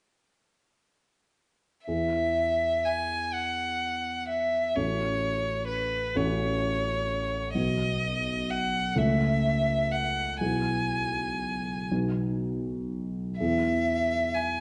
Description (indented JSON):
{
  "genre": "classical, romantic duo for violin and grand piano",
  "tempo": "40-43 BPM (dotted quarters)",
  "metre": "6/8",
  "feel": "rubato",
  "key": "E major",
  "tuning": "A4 = 444 Hz",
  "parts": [
    { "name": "clear violin", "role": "melody", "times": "1.9-14.6 s", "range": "B4 to G#5", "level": "-30 LUFS", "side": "equal", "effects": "none" },
    { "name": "dark baby grand piano", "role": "accompaniment", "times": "1.9-14.6 s", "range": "A1 to A4", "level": "-31 LUFS", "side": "equal", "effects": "none" }
  ],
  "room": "wet recital hall reverb, RT60 1.3 s",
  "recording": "nothing above 10.5 kHz",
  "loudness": "-28 LUFS",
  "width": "mono",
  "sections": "1.9-14.6 A section",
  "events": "none",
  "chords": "1.9 E; 4.8 F#m/A; 7.5 B; 9.0 A/C#; 10.4 E/B; 11.9 B; 13.4 E",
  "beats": "| 1.86 3.32 | 4.75 6.15 | 7.54 8.96 | 10.40 11.90 | 13.39"
}